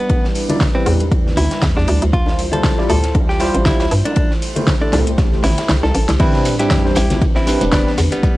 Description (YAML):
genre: deep house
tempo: 118 BPM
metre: 4/4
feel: swing 56% on 16ths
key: A minor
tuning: A4 = 440 Hz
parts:
  - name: direct-recorded clean electric guitar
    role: melody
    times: 0.0-8.4 s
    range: G3 to A4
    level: -22 LUFS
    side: equal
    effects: analog delay
  - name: warm analog pad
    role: sustained chords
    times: 0.0-8.4 s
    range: G3 to C5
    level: -25 LUFS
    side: right 1 dB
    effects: chorus, sidechain pumping
  - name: deep house drum kit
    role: drums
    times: 0.1-8.3 s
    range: crash cymbal, hi-hat, snare drum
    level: -23 LUFS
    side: equal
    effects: overdrive, vintage 12-bit sampler grit, small room ambience
  - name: deep reggae drum kit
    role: drums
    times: 0.1-8.4 s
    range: hi-hat, ride cymbal, snare drum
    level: -31 LUFS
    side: equal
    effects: sidechain pumping on cymbals, high-pass filter on cymbals, vintage 12-bit sampler grit, small room ambience, sidechain pumping on hats, high-pass filter on hats, high-pass filter on snare, high-pass filter on room
  - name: electronic kick drum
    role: drums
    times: 0.1-8.3 s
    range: none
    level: -17 LUFS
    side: equal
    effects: overdrive, vintage 12-bit sampler grit, small room ambience
  - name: bongos and congas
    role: percussion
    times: 0.1-8.1 s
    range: none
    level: -26 LUFS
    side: left 2 dB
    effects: sidechain pumping on perc
  - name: overdriven tine electric piano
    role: stabs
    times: 0.5-7.9 s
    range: G3 to D5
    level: -22 LUFS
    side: equal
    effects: lush chorus, sidechain pumping, analog delay
  - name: hollow knocking FM bass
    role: bass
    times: 0.9-8.1 s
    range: E1 to G2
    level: -18 LUFS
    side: equal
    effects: sidechain pumping
  - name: shekere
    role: percussion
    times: 6.2-8.3 s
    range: none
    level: -29 LUFS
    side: right 2 dB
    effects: none
  - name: sub drop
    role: sound effects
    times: 6.2-8.2 s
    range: none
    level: -25 LUFS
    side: equal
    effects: none
room: small room ambience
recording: dry, gritty hardware recording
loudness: -13 LUFS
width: side -18 dB against mid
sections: 0.0-6.2 A section; 6.2-8.4 B section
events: kick drops out 5.7-6.2; drum fill 5.7-6.2; drop 6.2-8.4; impact 6.2-8.2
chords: 0.0 Em7; 1.9 Dm11; 4.2 C6; 6.2 Am11